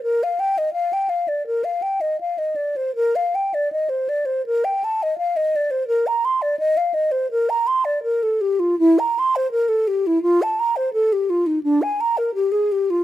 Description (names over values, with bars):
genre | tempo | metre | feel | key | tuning
classical, baroque-style fantasia for unaccompanied flute | 83 BPM | 4/4 | rubato | Bb major | A4 = 440 Hz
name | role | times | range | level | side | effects
mellow hollow concert flute | solo | 0.0-13.0 s | D4 to C6 | -18 LUFS | equal | none
room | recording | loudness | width
little or no reverb | close, detailed microphones | -18 LUFS | side -13 dB against mid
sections
0.0-13.0 A section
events
none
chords
none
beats
| 0.04 0.77 1.50 2.23 | 2.98 3.73 4.46 5.19 | 5.89 6.59 7.32 8.05 | 8.79 9.51 10.23 10.95 | 11.67 12.39